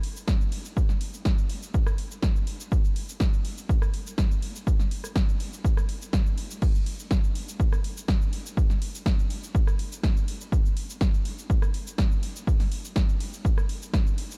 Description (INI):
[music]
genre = house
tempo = 123 BPM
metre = 4/4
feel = straight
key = none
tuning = none
[part]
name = punchy analog drum machine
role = drums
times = 0.0-14.4 s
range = crash cymbal, hi-hat, rim click, shaker, snare drum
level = -37 LUFS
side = equal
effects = sidechain pumping on perc, sidechain pumping on hats, sidechain pumping on cymbals
[part]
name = electronic kick drum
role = drums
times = 0.3-14.0 s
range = none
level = -26 LUFS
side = equal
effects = none
[sound]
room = little or no reverb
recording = none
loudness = -26 LUFS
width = mono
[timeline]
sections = 0.0-14.4 A section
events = none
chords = none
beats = 0.28 | 0.77 1.25 1.74 2.23 | 2.72 3.21 3.69 4.18 | 4.67 5.16 5.64 6.13 | 6.62 7.11 7.60 8.08 | 8.57 9.06 9.55 10.04 | 10.52 11.01 11.50 11.99 | 12.47 12.96 13.45 13.94